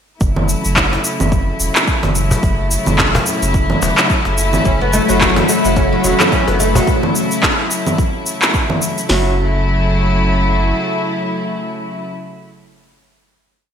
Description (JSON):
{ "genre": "organic downtempo", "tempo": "108 BPM", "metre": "4/4", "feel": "swing 57% on 16ths", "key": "F# minor", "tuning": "A4 = 435 Hz", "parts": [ { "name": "warm studio string section", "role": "sustained chords", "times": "0.2-12.1 s", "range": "C#3 to E4", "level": "-19 LUFS", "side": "left 1 dB", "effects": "sidechain pumping" }, { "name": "warm sub bass", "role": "bass", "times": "0.2-10.7 s", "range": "E1 to F#1", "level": "-18 LUFS", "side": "equal", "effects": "none" }, { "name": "deep house drum kit", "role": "drums", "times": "0.2-9.2 s", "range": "hi-hat, kick drum, snare drum", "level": "-18 LUFS", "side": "equal", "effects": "overdrive" }, { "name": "electronic shaker, congas and handclaps", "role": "drums", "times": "0.2-9.1 s", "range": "none", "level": "-16 LUFS", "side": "equal", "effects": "overdrive, gated reverb" }, { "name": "cajon", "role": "percussion", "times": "0.9-6.8 s", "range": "none", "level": "-22 LUFS", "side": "left 1 dB", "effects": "none" }, { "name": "oud", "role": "arpeggios", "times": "4.7-9.4 s", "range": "F#3 to F#4", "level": "-17 LUFS", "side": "left 1 dB", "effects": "ping-pong delay" } ], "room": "moderate lush hall reverb, RT60 1.7 s", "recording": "bright 1980s-style digital production", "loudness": "-13 LUFS", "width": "side -8 dB against mid", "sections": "0.2-9.1 groove; 9.1-11.3 final chord", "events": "none", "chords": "0.2 F#m7" }